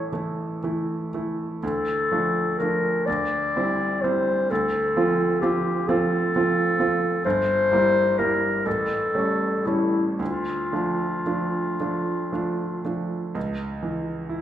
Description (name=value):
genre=classical, romantic duo for clarinet and grand piano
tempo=37-44 BPM (dotted quarters)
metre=6/8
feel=rubato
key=D minor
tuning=A4 = 439 Hz
part: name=clear clarinet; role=melody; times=0.0-12.8 s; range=E4 to D5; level=-23 LUFS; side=left 2 dB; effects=none
part: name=bright grand piano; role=accompaniment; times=0.0-14.4 s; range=G1 to F4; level=-25 LUFS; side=right 2 dB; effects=none
room=wet recital hall reverb, RT60 1.6 s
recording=recorded in a church or concert hall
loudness=-21 LUFS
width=side -11 dB against mid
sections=0.0-13.4 A section; 13.4-14.4 B section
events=none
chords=0.0 A5; 1.6 Dm; 3.1 C/D; 4.5 F/D; 7.2 Edim/G; 8.7 A7; 10.2 Dm; 13.4 A/C# (rootless)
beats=0.12 | 1.62 3.07 | 4.50 5.88 | 7.25 8.66 | 10.20 11.80 | 13.36